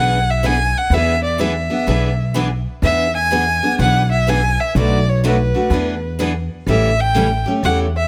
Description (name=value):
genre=acoustic string swing (jazz manouche)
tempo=125 BPM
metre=4/4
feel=swing 64% on 8ths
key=E mixolydian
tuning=A4 = 440 Hz
part: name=warm violin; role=melody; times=0.0-8.1 s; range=B4 to G#5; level=-21 LUFS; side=equal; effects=none
part: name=picked steel-string acoustic guitar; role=accompaniment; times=0.0-7.9 s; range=B2 to G#4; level=-24 LUFS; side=equal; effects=none
part: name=picked steel-string acoustic guitar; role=accompaniment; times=0.0-7.9 s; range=B2 to B4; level=-28 LUFS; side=equal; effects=none
part: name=upright bass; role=bass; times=0.0-8.1 s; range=A1 to E2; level=-21 LUFS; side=equal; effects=none
room=light reverb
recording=none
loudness=-17 LUFS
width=mono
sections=0.0-8.1 A section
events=none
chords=0.0 E7; 4.8 Bm7; 5.7 E7; 6.7 A7